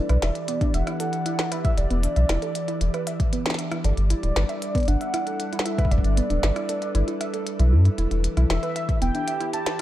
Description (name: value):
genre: IDM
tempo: 116 BPM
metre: 4/4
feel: straight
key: E minor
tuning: A4 = 441 Hz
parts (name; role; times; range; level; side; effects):
- warm velvety synth lead; melody; 0.0-9.8 s; D5 to A5; -30 LUFS; equal; chorus, analog delay, shimmer reverb
- warbly tape-like pad; sustained chords; 0.0-9.8 s; E3 to D5; -31 LUFS; right 1 dB; chorus, built-in reverb, sidechain pumping, shimmer reverb
- warbly dusty pluck; arpeggios; 0.0-9.8 s; B3 to E5; -31 LUFS; right 2 dB; chorus, analog delay, shimmer reverb
- warm sub bass; bass; 0.1-9.1 s; D1 to G2; -20 LUFS; equal; none
- glitchy drum kit; drums; 0.1-9.8 s; hi-hat, rim click, snare drum; -30 LUFS; equal; analog delay
- electronic kick drum; drums; 0.6-9.0 s; none; -23 LUFS; equal; none
room: light reverb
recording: echo-heavy mix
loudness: -21 LUFS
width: side -14 dB against mid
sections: 0.0-9.8 A section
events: none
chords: 0.0 Em7; 3.8 G; 8.0 Em7